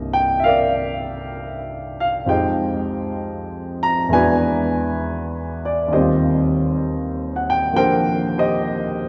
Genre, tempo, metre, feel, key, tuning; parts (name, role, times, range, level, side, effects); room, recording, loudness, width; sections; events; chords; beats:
jazz ballad; 66 BPM; 4/4; swing 69% on 8ths; Eb major; A4 = 440 Hz
warm grand piano; solo; 0.0-9.1 s; C2 to Bb5; -20 LUFS; equal
wet church reverb, RT60 3.4 s; recorded in a church or concert hall; -20 LUFS; mono
0.0-9.1 A section
0.0 Cm11; 2.3 Fm9; 4.1 E9; 5.9 Eb69
0.44 1.35 | 2.27 3.18 4.09 5.00 | 5.91 6.82 7.73 8.64